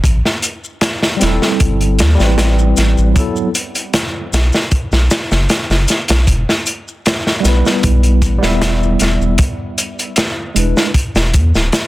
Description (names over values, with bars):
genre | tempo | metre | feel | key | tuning
trip hop | 77 BPM | 4/4 | straight | E minor | A4 = 439 Hz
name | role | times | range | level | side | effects
round analog bass | bass | 0.0-11.7 s | D1 to E2 | -13 LUFS | equal | none
crunchy breakbeat drum kit | drums | 0.0-11.9 s | hi-hat, kick drum, snare drum | -15 LUFS | equal | none
maracas | percussion | 0.1-11.9 s | none | -25 LUFS | left 3 dB | none
tine electric piano | accompaniment | 1.2-10.9 s | F#3 to E5 | -18 LUFS | right 1 dB | medium stereo tremolo, harmonic tremolo, vintage 12-bit sampler grit, tape echo
room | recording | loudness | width
little or no reverb | dense, heavily limited modern master | -12 LUFS | side -17 dB against mid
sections
0.0-11.9 A section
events
none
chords
0.0 Am7; 3.2 B7sus4; 6.3 Em; 9.4 E7